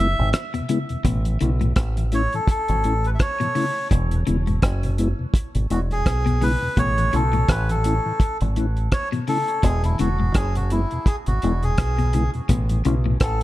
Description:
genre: roots reggae.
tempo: 84 BPM.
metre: 4/4.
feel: swing 57% on 16ths.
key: A major.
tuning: A4 = 440 Hz.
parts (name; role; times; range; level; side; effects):
melodica; melody; 0.0-13.4 s; E4 to E5; -26 LUFS; equal; dub echo.
mellow tonewheel organ; accompaniment; 0.0-13.1 s; E2 to E4; -27 LUFS; left 2 dB; slow rotary speaker.
deep dub fingered electric bass; bass; 0.0-13.4 s; E1 to B1; -21 LUFS; equal; none.
cloth-damped thuddy drum kit; drums; 0.3-13.4 s; hi-hat, kick drum, rim click; -22 LUFS; equal; none.
clean electric guitar; arpeggios; 0.5-13.2 s; G#2 to C#3; -27 LUFS; left 4 dB; spring reverb.
room: small room ambience.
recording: none.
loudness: -19 LUFS.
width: side -16 dB against mid.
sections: 0.0-1.0 A section; 1.0-13.4 B section.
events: break 0.0-1.0; melodica solo 1.0-13.4.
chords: 0.0 E; 1.0 A; 3.9 E; 6.8 A; 9.6 E; 12.5 A.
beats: 0.33 | 1.05 1.76 2.48 3.19 | 3.91 4.62 5.34 6.06 | 6.77 7.49 8.20 8.92 | 9.63 10.35 11.06 11.78 | 12.49 13.21.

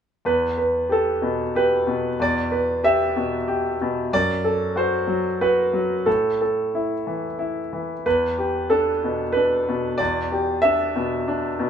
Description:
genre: classical.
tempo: 93 BPM.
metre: 3/4.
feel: rubato.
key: E minor.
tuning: A4 = 439 Hz.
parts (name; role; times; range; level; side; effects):
bright concert grand piano; accompaniment; 0.2-11.7 s; E2 to E5; -20 LUFS; equal; none.
room: wet studio reverb, RT60 0.5 s.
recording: band playing live in one room.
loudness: -20 LUFS.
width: side -8 dB against mid.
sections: 0.3-11.7 A section.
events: none.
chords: 0.3 Em7; 4.1 F#dim; 6.1 A5; 8.1 Em7.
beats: | 0.25 0.90 1.55 | 2.19 2.83 3.47 | 4.12 4.75 5.40 | 6.06 6.73 7.39 | 8.05 8.70 9.35 | 9.99 10.63 11.27.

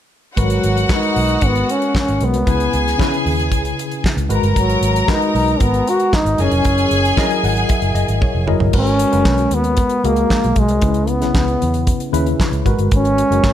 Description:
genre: disco.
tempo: 115 BPM.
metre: 4/4.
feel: straight.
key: G# minor.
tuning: A4 = 440 Hz.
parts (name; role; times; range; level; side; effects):
breathy trombone; melody; 0.4-13.5 s; F#3 to F#4; -18 LUFS; equal; none.
clear studio string section; second line; 0.4-8.4 s; F#4 to A#5; -21 LUFS; left 2 dB; none.
tine electric piano; accompaniment; 0.4-13.5 s; C#3 to F#5; -21 LUFS; left 2 dB; overdrive, fast stereo tremolo.
vintage muted fingered electric bass; bass; 0.4-13.5 s; E#1 to E2; -19 LUFS; equal; none.
damped 70s drum kit; drums; 0.4-13.5 s; crash cymbal, handclaps, hi-hat, kick drum, snare drum, toms; -19 LUFS; equal; none.
room: moderate large studio reverb, RT60 1.1 s.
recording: none.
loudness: -14 LUFS.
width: side -11 dB against mid.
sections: 0.4-8.7 A section; 8.7-13.5 B section.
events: tine electric piano fill 7.2-8.7; drum fill 8.2-8.7.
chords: 0.4 G#m9; 2.5 C#m7; 4.3 G#m9; 6.4 F#13; 8.7 G#m9; 10.8 C#m7; 12.7 G#m9.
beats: | 0.37 0.90 1.42 1.94 | 2.46 2.99 3.51 4.03 | 4.56 5.08 5.60 6.12 | 6.65 7.17 7.69 8.21 | 8.74 9.26 9.78 10.30 | 10.83 11.35 11.87 12.39 | 12.91 13.44.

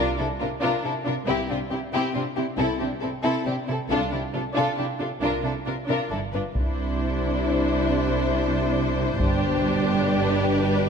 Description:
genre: cinematic, epic orchestral film score.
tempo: 137 BPM.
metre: 3/4.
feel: straight.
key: C mixolydian, C major from 6.6 s.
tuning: A4 = 438 Hz.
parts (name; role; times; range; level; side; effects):
warm symphonic violin section; melody; 0.0-10.9 s; F4 to C5; -29 LUFS; left 5 dB; none.
warm symphonic violin section; second line; 0.0-10.9 s; D4 to G4; -29 LUFS; left 2 dB; none.
rich symphonic viola section; accompaniment; 0.0-10.9 s; C4 to D4; -29 LUFS; equal; none.
rich symphonic cello section; bass; 0.0-10.9 s; G2 to C3; -29 LUFS; right 4 dB; none.
rich symphonic double bass section; bass; 0.0-10.9 s; G1 to C2; -30 LUFS; right 4 dB; none.
mellow French horn section; sustained chords; 6.6-10.9 s; B2 to E4; -29 LUFS; left 6 dB; none.
solo taiko drums; drums; 6.6-10.0 s; none; -28 LUFS; equal; none.
room: moderate concert hall reverb, RT60 2.2 s.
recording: none.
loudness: -22 LUFS.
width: side -6 dB against mid.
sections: 0.0-6.6 A section; 6.6-10.9 B section.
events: build-up 0.0-6.6.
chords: 0.0 Bb/C; 1.3 C; 3.9 Dm/C; 6.1 G5; 6.6 Cadd9; 9.2 G.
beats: 0.40 0.84 | 1.27 1.71 2.14 | 2.58 3.02 3.46 | 3.90 4.34 4.78 | 5.22 5.67 6.11 | 6.56 7.01 7.45 | 7.89 8.32 8.76 | 9.20 9.63 10.07 | 10.52.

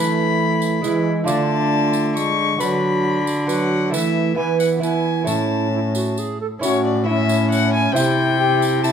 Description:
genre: classical, renaissance-style consort dance.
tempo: 135 BPM.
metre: 3/4.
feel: straight.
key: A major.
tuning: A4 = 440 Hz.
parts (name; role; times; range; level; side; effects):
warm violin; melody; 0.0-8.9 s; C#5 to C#6; -23 LUFS; left 7 dB; none.
mellow tenor recorder; second line; 0.0-8.9 s; C#4 to A4; -24 LUFS; right 6 dB; none.
lute; accompaniment; 0.0-8.9 s; A2 to E5; -25 LUFS; right 4 dB; none.
warm trombone; accompaniment; 0.0-8.9 s; F#3 to G4; -23 LUFS; left 2 dB; none.
rich cello; bass; 0.0-8.9 s; A2 to E3; -22 LUFS; right 1 dB; none.
tambourine; percussion; 0.6-8.9 s; none; -32 LUFS; right 5 dB; none.
room: moderate stone room reverb, RT60 1.1 s.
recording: none.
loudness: -16 LUFS.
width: side -7 dB against mid.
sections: 0.0-6.6 A section; 6.6-8.9 A section.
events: none.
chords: 0.0 Esus4; 0.8 E; 1.3 Dm; 2.6 Bm/D; 3.9 Esus4; 4.4 E; 5.3 A; 8.0 C.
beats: 0.40 0.84 | 1.28 1.72 2.16 | 2.60 3.04 3.49 | 3.93 4.37 4.82 | 5.27 5.72 6.17 | 6.62 7.07 7.51 | 7.96 8.40 8.85.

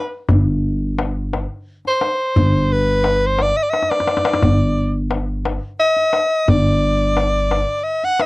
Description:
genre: Persian modal ensemble.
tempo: 58 BPM (dotted quarters).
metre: 6/8.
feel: straight.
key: G dastgah chahargah.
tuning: A4 = 441 Hz.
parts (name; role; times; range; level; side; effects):
breathy soprano saxophone; melody; 0.0-8.3 s; B4 to F#5; -17 LUFS; equal; none.
upright bass; bass; 0.3-7.6 s; G1; -18 LUFS; equal; none.
tombak; percussion; 0.3-8.3 s; none; -19 LUFS; left 2 dB; none.
room: little or no reverb.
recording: dry, close 1970s-style studio recording.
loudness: -15 LUFS.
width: side -21 dB against mid.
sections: 0.0-8.3 A section.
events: drum fill 3.7-4.4.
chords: none.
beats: | 0.31 1.34 | 2.37 3.40 | 4.43 5.46 | 6.49 7.53.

